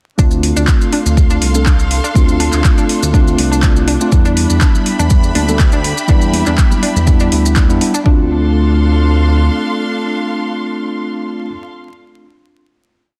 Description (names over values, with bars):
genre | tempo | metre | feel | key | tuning
deep house | 122 BPM | 4/4 | swing 54% on 16ths | D dorian | A4 = 441 Hz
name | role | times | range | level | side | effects
analog pluck | arpeggios | 0.2-8.3 s | D4 | -26 LUFS | equal | chorus, sidechain pumping, tape echo
mellow tine electric piano | stabs | 0.2-11.5 s | G3 to A4 | -20 LUFS | equal | sidechain pumping, tape echo
smooth synth bass | bass | 0.2-9.5 s | C2 to E2 | -17 LUFS | equal | sidechain pumping
electronic kick drum | drums | 0.2-8.2 s | none | -14 LUFS | equal | overdrive
maracas | percussion | 0.2-8.0 s | none | -26 LUFS | equal | none
warm studio string section | texture | 0.2-11.7 s | D4 to C6 | -26 LUFS | equal | sidechain pumping
deep house drum kit | drums | 0.4-7.9 s | handclaps, hi-hat | -23 LUFS | equal | overdrive
analog string pad | texture | 4.1-8.1 s | B5 | -31 LUFS | equal | ensemble chorus
congas | percussion | 4.7-7.1 s | none | -28 LUFS | equal | none
room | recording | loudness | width
light reverb | dense, heavily limited modern master, vinyl crackle | -13 LUFS | mono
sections
0.2-8.1 drop; 8.1-12.0 final chord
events
drop 0.2-8.1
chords
0.2 Dm7; 4.1 Em7; 8.1 Dm7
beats
| 0.19 0.68 1.17 1.66 | 2.15 2.65 3.14 3.63 | 4.12 4.61 5.11 5.60 | 6.09 6.58 7.07 7.57 | 8.06 8.55 9.04 9.53 | 10.02 10.52 11.01 11.50